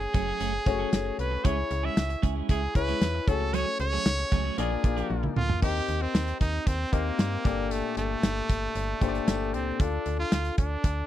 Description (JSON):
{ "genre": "1980s-style pop", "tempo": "115 BPM", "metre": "4/4", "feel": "straight", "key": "F# minor, G minor from 5.6 s", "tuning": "A4 = 440 Hz", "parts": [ { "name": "bright trumpet", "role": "melody", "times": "0.0-11.1 s", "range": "A3 to E5", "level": "-31 LUFS", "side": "right 2 dB", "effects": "slapback echo" }, { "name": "clear grand piano", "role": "accompaniment", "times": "0.0-11.1 s", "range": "Bb2 to Eb5", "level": "-33 LUFS", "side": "left 11 dB", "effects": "none" }, { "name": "twelve-string electric guitar", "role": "riff", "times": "0.0-5.5 s", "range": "E#3 to G#4", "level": "-34 LUFS", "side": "right 9 dB", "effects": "wide subtle chorus, slapback echo" }, { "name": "slap-like FM bass", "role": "bass", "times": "0.0-11.0 s", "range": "F#1 to G2", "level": "-31 LUFS", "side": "equal", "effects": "none" }, { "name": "modern studio drum kit", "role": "drums", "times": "0.1-11.0 s", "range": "crash cymbal, hi-hat, kick drum, snare drum, tambourine, toms", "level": "-26 LUFS", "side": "equal", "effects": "none" } ], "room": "little or no reverb", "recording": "dry, close 1970s-style studio recording", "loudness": "-25 LUFS", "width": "side -12 dB against mid", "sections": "0.0-5.6 A section; 5.6-11.1 A section", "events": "drum fill 5.1-5.6", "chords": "0.0 F#madd9; 1.4 C#m; 3.3 F#madd9/C#; 4.6 A#7; 5.6 Eb6; 7.5 Gmadd9; 9.8 Dm", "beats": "0.41 0.93 | 1.45 1.97 2.49 3.02 | 3.54 4.06 4.58 5.10 | 5.62 6.14 6.67 7.19 | 7.71 8.23 8.75 9.28 | 9.80 10.32 10.84" }